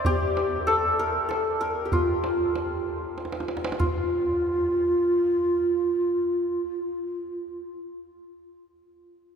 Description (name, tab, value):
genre	Persian modal ensemble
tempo	96 BPM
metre	3/4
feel	straight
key	F dastgah mahur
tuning	A4 = 440 Hz
part	santur	melody	0.0-7.8 s	F4 to E5	-27 LUFS	equal	none
part	breathy mellow low ney	second line	0.0-7.8 s	F4 to Bb4	-26 LUFS	equal	none
part	tombak	percussion	0.0-4.1 s	none	-31 LUFS	right 1 dB	none
room	wet cathedral reverb, RT60 4.9 s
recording	recorded in a church or concert hall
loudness	-23 LUFS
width	side -7 dB against mid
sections	0.0-3.8 A section; 3.8-7.5 B section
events	drum fill 3.2-3.8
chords	none